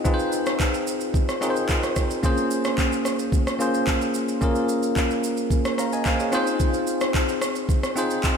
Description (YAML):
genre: amapiano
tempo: 110 BPM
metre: 4/4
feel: straight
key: Bb minor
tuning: A4 = 440 Hz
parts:
  - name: bell-like tine electric piano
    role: accompaniment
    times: 0.0-8.4 s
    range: Bb3 to Bb5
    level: -23 LUFS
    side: left 1 dB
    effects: none
  - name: smooth R&B drum kit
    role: drums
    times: 0.1-8.4 s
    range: handclaps, kick drum, rim click, shaker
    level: -24 LUFS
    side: right 1 dB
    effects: none
room: wet lush hall reverb, RT60 2.8 s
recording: dreamy mix soaked in reverb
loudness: -20 LUFS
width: side -6 dB against mid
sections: 0.0-8.4 A section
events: none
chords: 0.0 Fm7; 2.2 Bbm7; 6.3 Fm7